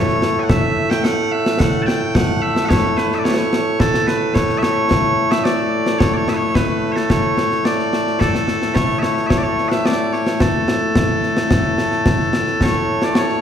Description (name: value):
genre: scottish traditional, Scottish pipe music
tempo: 109 BPM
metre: 4/4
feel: straight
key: A major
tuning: A4 = 440 Hz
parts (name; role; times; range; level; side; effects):
- loud bright bagpipes; melody; 0.0-13.4 s; A2 to A5; -17 LUFS; equal; none
- concert snare drum and concert bass drum; drums; 0.1-13.4 s; none; -18 LUFS; equal; none
room: wet concert hall reverb, RT60 1.7 s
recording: heard from further back in the room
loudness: -15 LUFS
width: side -8 dB against mid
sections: 0.0-12.6 A section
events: none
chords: none